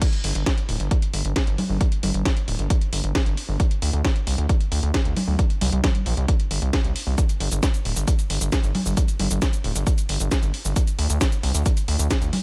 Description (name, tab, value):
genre	uplifting trance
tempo	134 BPM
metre	4/4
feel	straight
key	unclear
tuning	A4 = 440 Hz
part	electronic kick drum	drums	0.0-12.2 s	none	-24 LUFS	equal	none
part	techno drum kit	drums	0.0-12.4 s	congas, crash cymbal, hi-hat, shaker, snare drum	-29 LUFS	equal	none
part	gritty driven synth bass	bass	0.2-12.3 s	D1 to D2	-26 LUFS	equal	sidechain pumping
room	little or no reverb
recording	none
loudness	-22 LUFS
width	mono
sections	0.0-12.4 A section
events	none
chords	none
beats	| 0.02 0.46 0.91 1.36 | 1.81 2.25 2.70 3.15 | 3.60 4.05 4.49 4.94 | 5.39 5.84 6.28 6.73 | 7.18 7.63 8.07 8.52 | 8.97 9.42 9.87 10.31 | 10.76 11.21 11.66 12.11